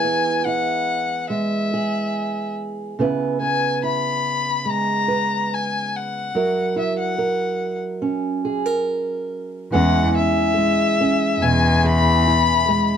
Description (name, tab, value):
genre	acoustic folk-pop ballad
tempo	71 BPM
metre	4/4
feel	straight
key	unclear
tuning	A4 = 440 Hz
part	warm violin	melody	0.0-13.0 s	E5 to B5	-21 LUFS	left 6 dB	none
part	fingerpicked old ladder-braced acoustic guitar	accompaniment	0.0-13.0 s	B2 to B4	-22 LUFS	right 4 dB	none
part	warm cello	bass	9.7-12.8 s	E2	-19 LUFS	left 1 dB	none
room	moderate studio reverb, RT60 0.5 s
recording	dark, warm production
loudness	-18 LUFS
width	side -8 dB against mid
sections	0.0-9.7 A section; 9.7-13.0 B section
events	none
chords	0.0 E; 3.0 C#m7; 6.3 F#7; 9.7 E6